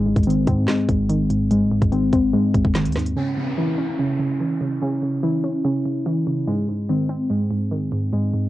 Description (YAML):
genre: hip hop, drill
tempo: 145 BPM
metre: 4/4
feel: half-time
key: C# harmonic minor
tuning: A4 = 436 Hz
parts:
  - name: warbly dusty pluck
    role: accompaniment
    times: 0.0-8.5 s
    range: G#2 to C#4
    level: -23 LUFS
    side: right 2 dB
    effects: chorus, low-pass filter, cassette tape
  - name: muted felt-like synth keys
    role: arpeggios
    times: 0.0-8.5 s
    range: G#3 to E4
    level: -21 LUFS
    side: left 1 dB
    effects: chorus, low-pass filter, cassette tape, tape echo
  - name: hard-hitting 808-style bass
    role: bass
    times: 0.0-3.1 s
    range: F#1 to G#2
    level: -26 LUFS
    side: equal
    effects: none
  - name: drill drum kit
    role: drums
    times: 0.2-3.2 s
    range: handclaps, hi-hat, kick drum, rim click, snare drum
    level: -22 LUFS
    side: equal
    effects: cassette tape
  - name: downlifter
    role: sound effects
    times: 3.2-6.5 s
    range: none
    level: -34 LUFS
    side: left 1 dB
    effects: none
room: moderate small room reverb, RT60 0.5 s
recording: home recording on cassette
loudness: -18 LUFS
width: side -15 dB against mid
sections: 0.0-3.2 A section; 3.2-8.5 B section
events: none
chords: 0.0 G#; 3.2 C#m; 6.5 G#